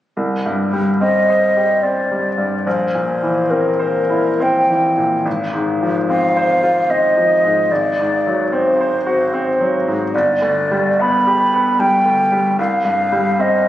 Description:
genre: classical, romantic duo for flute and grand piano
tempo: 64-76 BPM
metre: 3/4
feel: rubato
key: C minor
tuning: A4 = 441 Hz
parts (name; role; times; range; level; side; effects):
- bright grand piano; accompaniment; 0.2-13.7 s; G1 to C5; -18 LUFS; equal; none
- mellow hollow silver concert flute; melody; 1.0-13.7 s; Bb4 to B5; -16 LUFS; equal; none
room: moderate recital hall reverb, RT60 1.7 s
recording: recorded on a phone in the room, studio reverb, compression, nothing above 10.5 kHz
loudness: -14 LUFS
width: side -13 dB against mid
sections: 0.2-13.7 A section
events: none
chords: 0.2 Cm; 2.7 C7/Bb; 5.3 Fm/Ab; 7.7 Ab7; 10.1 G; 12.6 Cm

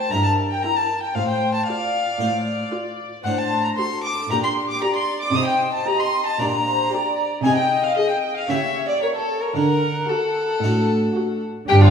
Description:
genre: classical, baroque-style concerto movement with solo episodes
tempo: 114 BPM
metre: 4/4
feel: straight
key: unclear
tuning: A4 = 441 Hz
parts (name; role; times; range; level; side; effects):
- rich violin; melody; 0.0-11.9 s; F4 to Eb6; -24 LUFS; left 2 dB; none
- warm studio violin section; melody; 0.0-11.9 s; G4 to G5; -28 LUFS; left 5 dB; none
- warm chamber violin section; second line; 0.0-11.9 s; F4 to Eb6; -25 LUFS; equal; none
- harpsichord; accompaniment; 0.0-11.9 s; G2 to C5; -28 LUFS; equal; none
- rich studio cello section; bass; 0.1-11.9 s; G2 to D3; -21 LUFS; right 2 dB; none
- dark chamber viola section; accompaniment; 0.6-11.9 s; D4 to A#4; -28 LUFS; equal; none
- rich chamber double bass section; bass; 11.7-11.9 s; G1; -21 LUFS; right 1 dB; none
room: wet recital hall reverb, RT60 1.8 s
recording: small room ambience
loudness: -19 LUFS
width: side -7 dB against mid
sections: 0.0-11.7 A section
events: none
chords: 0.1 Edim/G; 1.2 F/A; 3.3 D7/A; 4.3 Gm/Bb; 5.3 Cm; 6.4 Gm/Bb; 7.4 Ab/C; 8.5 C#dim7; 9.6 D

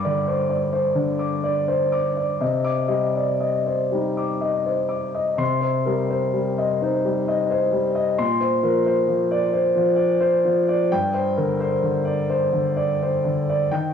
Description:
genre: neoclassical minimalist piano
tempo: 39-45 BPM (dotted quarters)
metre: 6/8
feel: rubato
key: C minor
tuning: A4 = 440 Hz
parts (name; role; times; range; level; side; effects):
- clear concert grand piano; solo; 0.0-13.9 s; G2 to D6; -19 LUFS; left 1 dB; none
room: light reverb, studio reverb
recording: home recording on cassette, small room ambience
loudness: -19 LUFS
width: side -7 dB against mid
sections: 0.0-5.4 A section; 5.4-13.9 A section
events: none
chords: 0.0 Gsus4; 2.4 Cmadd9; 5.4 Cm; 8.2 Bbadd9; 10.9 Gsus4

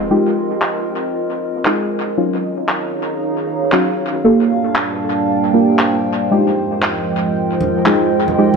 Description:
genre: deep house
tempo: 116 BPM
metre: 4/4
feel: swing 60% on 16ths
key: unclear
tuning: A4 = 440 Hz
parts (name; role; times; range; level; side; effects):
- dark analog pad; sustained chords; 0.0-8.6 s; F3 to C6; -22 LUFS; equal; chorus, phaser
- deep mellow chord stab; stabs; 0.0-8.6 s; Gb3 to Bb4; -16 LUFS; right 1 dB; chorus, dub echo
- swinging big-band drum kit; drums; 0.0-8.6 s; hi-hat, snare drum, tambourine; -38 LUFS; equal; none
- warbly tape-like pad; texture; 0.0-8.6 s; C4 to G5; -21 LUFS; right 2 dB; chorus, built-in reverb
- electronic handclaps; drums; 0.6-8.0 s; none; -21 LUFS; equal; low-pass filter on hats, studio reverb, low-pass filter on snare, tape echo
- congas; percussion; 7.6-8.6 s; none; -24 LUFS; right 3 dB; tape echo
room: moderate plate reverb, RT60 1.4 s, studio reverb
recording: echo-heavy mix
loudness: -14 LUFS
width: side -5 dB against mid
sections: 0.0-8.6 A section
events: filter sweep on synth stab 0.0-8.6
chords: 0.0 Fm9; 2.2 Ebm9; 4.2 Gm9; 6.3 Fm9

